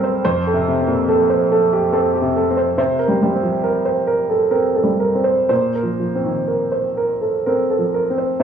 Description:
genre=neoclassical minimalist piano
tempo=60-72 BPM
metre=3/4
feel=rubato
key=unclear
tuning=A4 = 440 Hz
part: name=clear concert grand piano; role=solo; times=0.0-8.4 s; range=F2 to C5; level=-15 LUFS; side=right 1 dB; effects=cassette tape
room=moderate spring reverb, RT60 1.3 s, studio ambience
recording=home recording on cassette, small room reverb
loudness=-15 LUFS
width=side -8 dB against mid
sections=0.0-8.4 A section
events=none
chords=0.2 F; 2.8 C5; 5.5 Bbsus2

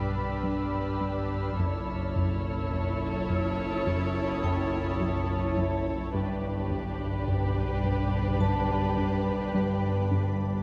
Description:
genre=cinematic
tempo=53 BPM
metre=4/4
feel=straight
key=unclear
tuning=A4 = 439 Hz
part: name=muted studio violin section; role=melody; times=0.0-10.6 s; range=B4 to C#5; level=-39 LUFS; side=equal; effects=none
part: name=muted studio violin section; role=second line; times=0.0-10.6 s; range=G4 to A4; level=-41 LUFS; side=equal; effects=none
part: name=muted studio viola section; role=accompaniment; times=0.0-10.6 s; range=D4 to E4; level=-39 LUFS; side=equal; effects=none
part: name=evolving wavetable pad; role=sustained chords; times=0.0-10.6 s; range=D4 to B5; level=-40 LUFS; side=equal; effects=chorus, built-in reverb
part: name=plucky analog bass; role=riff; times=0.0-10.5 s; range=F#2 to G3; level=-35 LUFS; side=equal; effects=none
part: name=muted chamber cello section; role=bass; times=0.0-10.6 s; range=F#2 to G2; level=-38 LUFS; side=equal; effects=none
part: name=muted studio double bass section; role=bass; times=0.0-10.6 s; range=F#1 to G1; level=-35 LUFS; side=equal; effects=none
part: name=analog drone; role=drone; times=0.0-10.6 s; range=B1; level=-39 LUFS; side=equal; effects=chorus, phaser
part: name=muted studio violin section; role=texture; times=0.0-5.5 s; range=B5 to E#6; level=-43 LUFS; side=equal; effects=none
part: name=vibraphone with hard mallets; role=texture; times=0.0-10.6 s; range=E4 to A5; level=-41 LUFS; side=equal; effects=none
room=moderate concert hall reverb, RT60 2.3 s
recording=none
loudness=-29 LUFS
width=mono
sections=0.0-10.6 A section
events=none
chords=0.0 G; 1.6 F#m7; 6.2 G

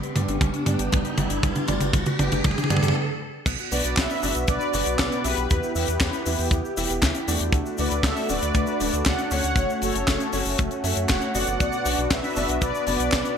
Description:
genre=italo disco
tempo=118 BPM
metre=4/4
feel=straight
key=B minor from 3.5 s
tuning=A4 = 440 Hz
part: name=warm analog pad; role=sustained chords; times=0.0-13.4 s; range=A3 to G4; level=-31 LUFS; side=equal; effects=chorus
part: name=mellow electric guitar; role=arpeggios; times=0.0-13.3 s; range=G3 to F#5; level=-35 LUFS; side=left 3 dB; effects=wide subtle chorus, ping-pong delay
part: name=tight funk drum kit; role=drums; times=0.0-13.4 s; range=cabasa, crash cymbal, handclaps, hi-hat, snare drum, toms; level=-26 LUFS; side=left 1 dB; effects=gated reverb
part: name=riser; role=sound effects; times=0.0-3.0 s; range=none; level=-30 LUFS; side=right 1 dB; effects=none
part: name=warm baby grand piano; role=stabs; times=0.2-13.4 s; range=G2 to E5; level=-31 LUFS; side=right 3 dB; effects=analog chorus
part: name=round analog bass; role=bass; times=0.2-13.2 s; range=D1 to G2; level=-29 LUFS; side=equal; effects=none
part: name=kick drum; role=drums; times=0.4-13.2 s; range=none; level=-24 LUFS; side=equal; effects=none
part: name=mellow synth brass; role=melody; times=3.7-13.4 s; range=G4 to F#5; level=-27 LUFS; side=equal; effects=chorus, ping-pong delay
room=moderate plate reverb, RT60 1.2 s, small room ambience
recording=bright 1980s-style digital production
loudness=-21 LUFS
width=side -7 dB against mid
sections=0.0-3.5 A section; 3.5-13.4 B section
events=drum fill 0.0-3.0; riser 0.0-3.0; filter sweep on analog synth pad 0.0-3.5; stop 3.0-3.5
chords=0.0 G; 3.5 Bm; 5.5 Em; 7.5 D; 9.6 F#m; 11.6 Bm

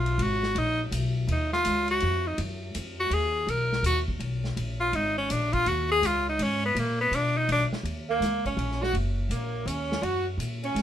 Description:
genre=jazz, small-group swing and bop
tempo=165 BPM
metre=3/4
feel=swing 65% on 8ths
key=Eb minor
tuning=A4 = 440 Hz
part: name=bright tenor saxophone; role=melody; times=0.0-10.8 s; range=A#3 to A#4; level=-26 LUFS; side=left 1 dB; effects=none
part: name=upright bass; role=bass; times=0.0-10.8 s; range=Gb1 to B2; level=-29 LUFS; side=equal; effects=none
part: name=vintage drum kit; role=drums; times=0.1-10.8 s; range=hi-hat, kick drum, ride cymbal, snare drum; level=-37 LUFS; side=left 1 dB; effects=none
part: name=clear tenor saxophone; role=second line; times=8.1-10.8 s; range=Bb3 to Gb4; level=-31 LUFS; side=right 5 dB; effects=none
room=light reverb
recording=minimal, uncompressed stereo recording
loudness=-24 LUFS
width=side -10 dB against mid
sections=0.0-7.8 A section; 7.8-10.8 B section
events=tenor saxophone solo 0.0-7.8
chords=0.0 Abm7; 1.3 Ebm7; 3.5 Bmaj7; 4.6 Bb7; 5.7 Dbsus2; 6.8 Bmmaj7; 7.8 Ebm7

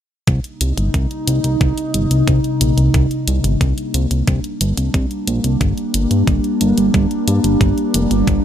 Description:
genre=synthwave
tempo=90 BPM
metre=4/4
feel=straight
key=C minor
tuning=A4 = 444 Hz
part: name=chorused pulse-width pad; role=sustained chords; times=0.3-8.4 s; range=C3 to Eb4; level=-18 LUFS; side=equal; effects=sidechain pumping
part: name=fat analog bass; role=bass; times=0.3-8.4 s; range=F1 to G2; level=-17 LUFS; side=equal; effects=none
part: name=electronic hi-hat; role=drums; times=0.3-8.4 s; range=none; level=-24 LUFS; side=left 1 dB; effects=none
part: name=electronic kick drum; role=drums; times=0.3-8.4 s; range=none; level=-18 LUFS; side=equal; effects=none
room=light reverb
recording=bright 1980s-style digital production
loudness=-14 LUFS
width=side -10 dB against mid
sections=0.3-8.4 A section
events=none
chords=0.3 Cm7; 5.6 Gm

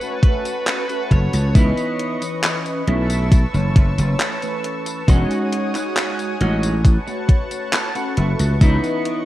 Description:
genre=vaporwave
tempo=68 BPM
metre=4/4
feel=straight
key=unclear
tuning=A4 = 440 Hz
part: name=biting lead guitar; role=melody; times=0.0-1.5 s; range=B4 to C#5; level=-29 LUFS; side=right 3 dB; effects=overdrive, tape echo
part: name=mellow synth brass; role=accompaniment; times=0.0-9.2 s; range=E3 to D#5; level=-26 LUFS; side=equal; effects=wide subtle chorus, vintage 12-bit sampler grit, tape echo
part: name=lush unison pad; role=sustained chords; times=0.0-9.3 s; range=B4 to E6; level=-28 LUFS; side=equal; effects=chorus
part: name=gated 80s digital drum machine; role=drums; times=0.0-9.2 s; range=handclaps, hi-hat, tambourine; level=-24 LUFS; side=equal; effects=gated reverb, overdrive, studio reverb
part: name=electronic kick drum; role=drums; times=0.2-8.8 s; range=none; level=-13 LUFS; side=equal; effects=overdrive, studio reverb
part: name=slap bass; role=bass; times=1.1-8.8 s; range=E1 to C#2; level=-18 LUFS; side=equal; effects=tube saturation
part: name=clean electric guitar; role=riff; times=1.5-9.3 s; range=G#3 to A5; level=-25 LUFS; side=right 1 dB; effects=lush chorus, vintage 12-bit sampler grit, tape echo
room=light reverb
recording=rough home demo mix, cassette tape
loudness=-16 LUFS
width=side -14 dB against mid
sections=0.0-9.3 A section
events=clean electric guitar fill 7.3-8.6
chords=0.0 A69; 1.6 C#m9; 2.9 B9sus4; 5.1 Emaj13 (rootless); 6.8 A69; 8.6 C#m9

